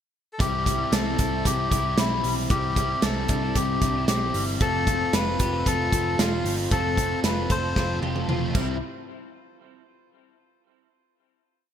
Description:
jangly indie pop; 114 BPM; 4/4; straight; C major; A4 = 439 Hz
melodica; melody; 0.3-8.0 s; E4 to C5; -27 LUFS; left 3 dB; ping-pong delay
biting overdriven guitar; accompaniment; 0.4-8.8 s; C3 to F4; -32 LUFS; right 4 dB
electric guitar through a small old amp; arpeggios; 0.4-8.8 s; G3 to A4; -31 LUFS; left 4 dB; analog chorus, ping-pong delay
vintage muted picked electric bass; bass; 0.4-8.8 s; E1 to C2; -29 LUFS; equal
modern studio drum kit; drums; 0.4-8.7 s; crash cymbal, hi-hat, kick drum, snare drum, toms; -26 LUFS; right 1 dB; gated reverb
light reverb, small room ambience; bright 1980s-style digital production; -22 LUFS; side -9 dB against mid
0.0-0.4 pickup bar; 0.4-8.8 verse; 8.8-10.9 final hit
drum fill 7.8-8.8
0.4 C; 4.6 F; 8.5 C; 8.8 N.C.

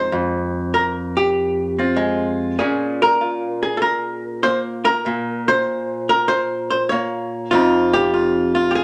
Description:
solo jazz; 97 BPM; 4/4; swing 69% on 8ths; A4 = 443 Hz
archtop guitar, miked and amplified; solo; 0.0-8.8 s; F2 to Db5; -19 LUFS; equal
wet studio reverb, RT60 0.7 s; -19 LUFS; mono
0.0-8.8 A section
0.0 Fmadd9; 2.6 Bbm9; 7.5 F7sus2

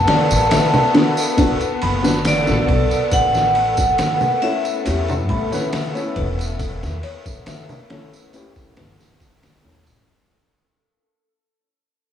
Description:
trip hop; 69 BPM; 4/4; straight; A4 = 442 Hz
vibraphone with hard mallets; melody; 0.0-9.2 s; D5 to A5; -20 LUFS; equal; tape echo
felt-muted upright piano; accompaniment; 0.0-10.1 s; A3 to B4; -21 LUFS; left 1 dB; harmonic tremolo, tape echo
rich studio string section; sustained chords; 0.0-10.1 s; B3; -27 LUFS; left 5 dB
music box; arpeggios; 0.0-9.2 s; B4 to B5; -29 LUFS; equal; tape echo
upright bass; bass; 0.0-10.1 s; E1 to A2; -23 LUFS; equal
backwards swelling texture; texture; 0.0-10.1 s; A4; -30 LUFS; right 2 dB; built-in reverb
trip hop sampler-style drum kit; drums; 0.1-10.1 s; kick drum, ride cymbal, snare drum; -23 LUFS; equal; overdrive
tambourine and congas; percussion; 0.3-10.0 s; -26 LUFS; right 2 dB
light reverb, small room ambience; dry, gritty hardware recording, transformer saturation; -15 LUFS; side -9 dB against mid
0.0-10.1 A section
fade-out 0.8-10.1
0.0 Bm7; 3.1 A

